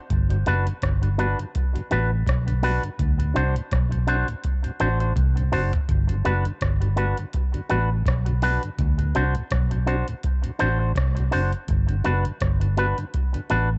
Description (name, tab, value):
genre	roots reggae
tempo	83 BPM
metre	4/4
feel	swing 56% on 16ths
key	G major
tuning	A4 = 440 Hz
part	vintage muted fingered electric bass	bass	0.1-13.8 s	F#1 to D2	-25 LUFS	equal	none
part	booming analog drum machine	drums	0.1-13.7 s	hi-hat, kick drum, rim click, toms	-26 LUFS	equal	cassette tape
part	mellow tonewheel organ	accompaniment	0.3-13.6 s	D2 to F#4	-35 LUFS	equal	chorus vibrato, slow rotary speaker, cassette tape, dub echo
part	electric guitar with an envelope filter	accompaniment	0.5-13.7 s	D4 to C5	-30 LUFS	equal	cassette tape, dub echo
room	little or no reverb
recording	home recording on cassette, nothing above 8.0 kHz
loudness	-23 LUFS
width	mono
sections	0.0-13.8 A section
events	drum fill 5.2-5.9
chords	0.1 Gmaj7; 3.0 D7; 5.9 Gmaj7; 8.8 D7; 11.7 Gmaj7